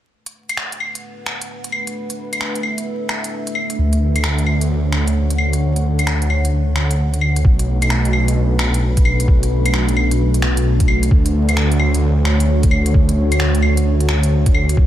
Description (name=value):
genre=future garage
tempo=131 BPM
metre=4/4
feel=swing 65% on 16ths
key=B minor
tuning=A4 = 437 Hz
part: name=deep dark ambient pad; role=sustained chords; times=1.0-14.9 s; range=A3 to F#5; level=-22 LUFS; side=right 1 dB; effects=chorus, built-in reverb, sidechain pumping
part: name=organic electronic drum kit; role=drums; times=0.3-14.8 s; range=claves, finger snaps, hi-hat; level=-22 LUFS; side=equal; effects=none
part: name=swelling detuned saw bass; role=bass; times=3.8-14.9 s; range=B1 to E2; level=-16 LUFS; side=equal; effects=sidechain pumping
part: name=electronic kick drum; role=drums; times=7.4-14.9 s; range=none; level=-14 LUFS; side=equal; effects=none
room=light reverb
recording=vinyl crackle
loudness=-14 LUFS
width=side -12 dB against mid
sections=0.1-7.4 A section; 7.4-14.9 B section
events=none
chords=0.1 Bm7; 3.8 Dmaj7; 7.4 Bm7; 11.1 Dmaj7